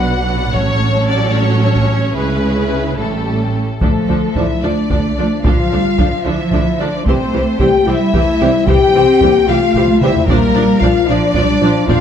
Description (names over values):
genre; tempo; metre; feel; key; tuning
cinematic, epic orchestral film score; 74 BPM (dotted quarters); 6/8; straight; F# minor, D minor from 3.8 s; A4 = 440 Hz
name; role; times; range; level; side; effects
warm symphonic violin section; melody; 0.0-12.0 s; A4 to F#5; -24 LUFS; left 4 dB; none
warm studio violin section; second line; 0.0-12.0 s; E4 to G5; -21 LUFS; left 3 dB; none
warm symphonic viola section; accompaniment; 0.0-12.0 s; E3 to G4; -21 LUFS; right 2 dB; none
mellow French horn section; sustained chords; 0.0-12.0 s; F#3 to G4; -17 LUFS; left 5 dB; none
rich studio double bass section; bass; 0.0-12.0 s; A1 to D2; -20 LUFS; right 3 dB; none
warm symphonic cello section; bass; 0.0-12.0 s; A2 to C4; -19 LUFS; right 3 dB; none
taiko ensemble; drums; 0.5-12.0 s; none; -18 LUFS; equal; none
warm trombone section; sustained chords; 4.4-11.7 s; F3 to D4; -23 LUFS; right 5 dB; none
room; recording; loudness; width
moderate scoring stage reverb, RT60 1.6 s; none; -11 LUFS; side -8 dB against mid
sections
0.0-3.8 A section; 3.8-12.0 B section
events
drum fill 9.9-10.3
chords
0.0 Bm; 0.5 F#m/A; 2.2 C#m; 3.0 A7; 3.8 Dm; 7.1 C; 10.3 Bb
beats
| 0.54 1.35 | 2.16 2.99 | 3.82 4.63 | 5.44 6.25 | 7.06 7.87 | 8.67 9.48 | 10.28 11.08 | 11.89